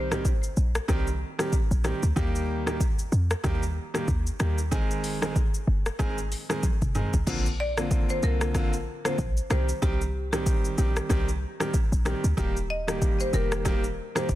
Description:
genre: afrobeats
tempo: 94 BPM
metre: 4/4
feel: swing 58% on 16ths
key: Eb major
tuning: A4 = 440 Hz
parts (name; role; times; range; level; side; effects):
- marimba with medium mallets; melody; 0.0-1.8, 7.6-14.4 s; G4 to Eb5; -33 LUFS; left 2 dB; ping-pong delay
- clear grand piano; accompaniment; 0.0-14.3 s; D3 to Ab4; -31 LUFS; right 1 dB; none
- short 808-style bass; bass; 0.0-14.4 s; Eb1 to F2; -27 LUFS; equal; none
- afro-pop drum kit; drums; 0.1-14.4 s; crash cymbal, hi-hat, kick drum, rim click, shaker, toms; -27 LUFS; equal; none
room: digital ambience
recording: dense, heavily limited modern master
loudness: -24 LUFS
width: side -14 dB against mid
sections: 0.0-7.3 A section; 7.3-14.4 B section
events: drum fill 6.6-7.3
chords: 0.0 Cm; 2.2 Eb; 4.7 Ab; 7.3 Bbadd9; 9.5 Cm; 12.4 Eb

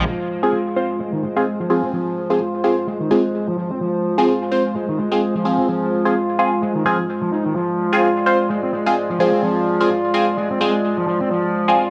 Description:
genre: breakbeat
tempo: 128 BPM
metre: 4/4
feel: swing 57% on 16ths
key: F dorian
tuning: A4 = 443 Hz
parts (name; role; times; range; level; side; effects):
- dark analog pad; sustained chords; 0.0-11.9 s; Ab3 to D5; -25 LUFS; equal; chorus
- distorted electric guitar; riff; 0.0-11.9 s; Eb3 to F4; -25 LUFS; equal; distortion, low-pass filter, dub echo
- band-passed chord stab; stabs; 0.4-11.8 s; C4 to C5; -22 LUFS; equal; phaser, dub echo
room: moderate studio reverb, RT60 0.6 s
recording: none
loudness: -19 LUFS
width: mono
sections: 0.1-11.9 A section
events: filter sweep on synth stab 0.1-11.9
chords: 0.1 Fm

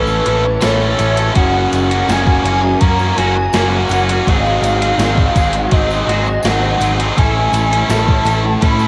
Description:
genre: rock, shoegaze and dream pop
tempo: 83 BPM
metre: 4/4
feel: straight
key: unclear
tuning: A4 = 440 Hz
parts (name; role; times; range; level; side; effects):
- warm velvety synth lead; melody; 0.0-8.9 s; Cb5 to Cb6; -21 LUFS; equal; chorus, cassette tape, analog delay
- ensemble organ-string; sustained chords; 0.0-8.9 s; Gb4 to Eb6; -31 LUFS; equal; none
- twangy electric guitar; arpeggios; 0.0-8.9 s; Eb3 to Gb4; -30 LUFS; equal; none
- biting overdriven guitar; riff; 0.0-8.9 s; Gb2 to A4; -20 LUFS; equal; reverse reverb, cassette tape
- overdriven semi-hollow guitar; riff; 0.0-8.9 s; Ab2 to Bb4; -27 LUFS; equal; none
- growling picked electric bass; bass; 0.0-8.9 s; Gb1 to A2; -20 LUFS; equal; overdrive
- tambourine; percussion; 0.1-8.9 s; none; -40 LUFS; equal; none
- gated 80s digital drum machine; drums; 0.3-8.8 s; hi-hat, kick drum, snare drum; -20 LUFS; equal; gated reverb, gated reverb snare
room: light reverb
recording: home recording on cassette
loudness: -14 LUFS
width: mono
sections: 0.0-8.9 A section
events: none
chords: 0.0 Amaj7; 1.4 Gb6; 4.3 Ab7; 7.2 Amaj7

